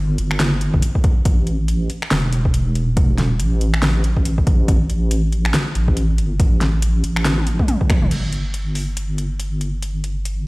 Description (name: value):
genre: deep dubstep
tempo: 140 BPM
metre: 4/4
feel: swing 59% on 16ths, half-time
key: unclear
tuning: A4 = 440 Hz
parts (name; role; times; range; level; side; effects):
- deep soft wobble bass; bass; 0.0-10.5 s; E1 to A1; -18 LUFS; equal; chorus
- deep house drum kit; drums; 0.2-10.4 s; crash cymbal, finger snaps, hi-hat, snare drum, toms; -22 LUFS; equal; overdrive
- electronic kick drum; drums; 0.7-8.0 s; none; -17 LUFS; equal; overdrive
room: digital ambience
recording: played on a big sound system in a bare room, large studio reverb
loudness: -16 LUFS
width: side -24 dB against mid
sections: 0.0-8.1 A section; 8.1-10.5 B section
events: drum fill 7.3-8.1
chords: none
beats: 0.40 0.83 | 1.25 1.68 2.11 2.54 | 2.97 3.40 3.83 4.25 | 4.68 5.11 5.54 5.97 | 6.40 6.83 7.25 7.68 | 8.11 8.54 8.97 9.40 | 9.83 10.26